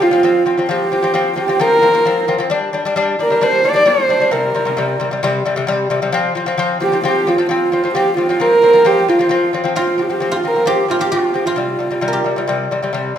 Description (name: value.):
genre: mongolian traditional, Mongolian folk.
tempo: 132 BPM.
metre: 4/4.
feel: straight.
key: F zhi mode.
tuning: A4 = 440 Hz.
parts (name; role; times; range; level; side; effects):
dark horsehead fiddle; melody; 0.0-12.4 s; F4 to D5; -14 LUFS; right 2 dB; none.
lute; arpeggios; 0.0-13.2 s; C3 to D4; -18 LUFS; left 3 dB; none.
guzheng; second line; 9.8-13.2 s; F4 to Bb4; -22 LUFS; right 1 dB; none.
room: wet recital hall reverb, RT60 1.4 s.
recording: minimal, uncompressed stereo recording.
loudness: -13 LUFS.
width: side -9 dB against mid.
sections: 0.0-9.8 A section; 9.8-13.2 B section.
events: none.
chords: 0.0 F5; 2.5 G5; 4.3 C5; 6.1 F5; 11.6 C5.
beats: 0.24 | 0.70 1.15 1.61 2.06 | 2.52 2.97 3.42 3.88 | 4.33 4.79 5.24 5.69 | 6.14 6.60 7.05 7.50 | 7.95 8.41 8.86 9.31 | 9.77 10.22 10.68 11.13 | 11.58 12.04 12.49 12.95.